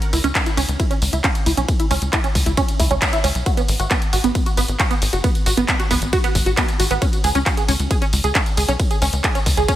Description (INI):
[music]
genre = uplifting trance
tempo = 135 BPM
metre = 4/4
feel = straight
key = C# minor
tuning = A4 = 441 Hz
[part]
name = punchy analog drum machine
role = drums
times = 0.0-9.8 s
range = handclaps, hi-hat, ride cymbal, tambourine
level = -23 LUFS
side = equal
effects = none
[part]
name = tight sequenced synth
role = arpeggios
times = 0.1-9.7 s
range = B3 to G#4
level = -22 LUFS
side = right 2 dB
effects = chorus, phaser, cassette tape, sidechain pumping, diffuse ambient delay
[part]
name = tight sequencer bass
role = bass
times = 0.1-9.7 s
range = F#1 to C#2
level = -21 LUFS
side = equal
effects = sidechain pumping
[part]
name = electronic kick drum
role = drums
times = 0.4-9.8 s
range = none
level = -20 LUFS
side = equal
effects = none
[sound]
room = light reverb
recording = none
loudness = -16 LUFS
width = side -13 dB against mid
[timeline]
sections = 0.0-9.8 A section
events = none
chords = 0.0 C#m; 3.5 G#7(no3); 7.0 C#5